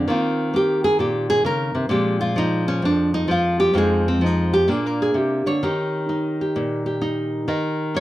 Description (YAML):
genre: solo jazz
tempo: 130 BPM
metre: 4/4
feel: swing 66% on 8ths, rubato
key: unclear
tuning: A4 = 440 Hz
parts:
  - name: nylon-string guitar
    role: solo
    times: 0.0-8.0 s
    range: F2 to Eb5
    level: -18 LUFS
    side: equal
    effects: none
room: light reverb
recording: none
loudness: -18 LUFS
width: side -15 dB against mid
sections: 0.0-8.0 A section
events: nylon-string guitar solo 0.0-8.0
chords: 0.1 Ebsus2; 1.9 Bbsus2; 3.7 Fm7; 4.7 Bbadd9; 5.6 Eb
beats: | 0.07 0.53 0.99 1.44 | 1.90 2.35 2.81 3.27 | 3.74 4.20 4.67 5.14 | 5.61 6.08 6.56 7.02 | 7.48 7.95